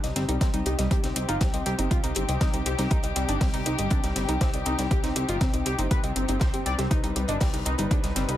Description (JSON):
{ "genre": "melodic techno", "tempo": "120 BPM", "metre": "4/4", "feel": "straight", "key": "C harmonic minor", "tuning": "A4 = 439 Hz", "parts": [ { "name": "fat analog lead", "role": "melody", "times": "0.0-8.4 s", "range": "G3 to D5", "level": "-31 LUFS", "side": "equal", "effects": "wide subtle chorus, sidechain pumping, digital delay" }, { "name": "muted chamber string section", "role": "sustained chords", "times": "0.0-8.4 s", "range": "C3 to B4", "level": "-34 LUFS", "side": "left 4 dB", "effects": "sidechain pumping" }, { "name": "woody wave-folded pluck", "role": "arpeggios", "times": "0.0-8.3 s", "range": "C4 to Eb5", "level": "-32 LUFS", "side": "left 1 dB", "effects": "chorus, sidechain pumping, digital delay" }, { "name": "plucky analog bass", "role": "bass", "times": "0.0-8.4 s", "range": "G1 to C2", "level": "-29 LUFS", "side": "equal", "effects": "sidechain pumping" }, { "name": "deep reggae drum kit", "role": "drums", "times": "0.0-8.3 s", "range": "hi-hat, snare drum", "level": "-40 LUFS", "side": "left 3 dB", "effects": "high-pass filter on hats, high-pass filter on snare, high-pass filter on room" }, { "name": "electronic hi-hat", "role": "drums", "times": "0.0-8.4 s", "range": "none", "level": "-34 LUFS", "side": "left 1 dB", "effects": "overdrive" }, { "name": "impact", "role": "sound effects", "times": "0.2-0.9 s", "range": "none", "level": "barely audible", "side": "none", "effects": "none" }, { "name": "electronic kick drum", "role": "drums", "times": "0.4-8.0 s", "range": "none", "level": "-25 LUFS", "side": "equal", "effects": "overdrive" } ], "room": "little or no reverb", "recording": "none", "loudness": "-23 LUFS", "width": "side -13 dB against mid", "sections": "0.0-8.4 A section", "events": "impact 0.0-0.9", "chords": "0.0 Cm" }